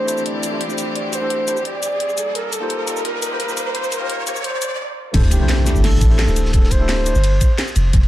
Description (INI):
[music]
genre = liquid drum and bass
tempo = 172 BPM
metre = 4/4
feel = straight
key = unclear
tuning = A4 = 440 Hz
[part]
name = mellow flugelhorn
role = melody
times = 0.0-7.8 s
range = G4 to D5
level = -24 LUFS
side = equal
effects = dub echo
[part]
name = tine electric piano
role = accompaniment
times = 0.0-7.1 s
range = A3 to D5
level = -27 LUFS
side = left 1 dB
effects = dub echo
[part]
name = rich chamber string section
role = sustained chords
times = 0.0-5.1 s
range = E3 to G4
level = -29 LUFS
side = equal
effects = none
[part]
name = riser and impact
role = sound effects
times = 0.2-6.5 s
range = none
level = -23 LUFS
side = equal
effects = none
[part]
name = drum and bass drum kit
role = drums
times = 0.1-8.0 s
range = crash cymbal, hi-hat, shaker, snare drum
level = -25 LUFS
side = left 1 dB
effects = high-pass filter on hats, high-pass filter on perc, high-pass filter on cymbals, high-pass filter on snare, high-pass filter on room
[part]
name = long sustained 808-style bass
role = bass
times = 0.2-8.1 s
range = D1 to C2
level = -16 LUFS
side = equal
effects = high-pass filter
[part]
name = crunchy breakbeat drum kit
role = drums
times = 5.1-8.1 s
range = hi-hat, ride cymbal, snare drum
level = -30 LUFS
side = equal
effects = high-pass filter on cymbals, high-pass filter on hats, high-pass filter on snare, high-pass filter on room, dub echo
[part]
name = electronic kick drum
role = drums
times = 5.1-8.0 s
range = none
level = -15 LUFS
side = equal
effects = none
[sound]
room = moderate spring reverb, RT60 1.4 s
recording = echo-heavy mix, high-pass filter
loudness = -16 LUFS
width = side -14 dB against mid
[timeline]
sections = 0.0-5.1 A section; 5.1-8.1 B section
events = build-up 0.0-5.1; riser 0.2-4.8; break 4.8-5.1; drop 5.1-8.1; impact 5.1-6.5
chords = 0.0 D9sus4; 2.2 F9sus4; 5.1 D9sus4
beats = 0.26 0.61 | 0.96 1.30 1.65 2.00 | 2.35 2.70 3.05 3.40 | 3.75 4.10 4.45 4.79 | 5.14 5.49 5.84 6.19 | 6.54 6.89 7.24 7.58 | 7.93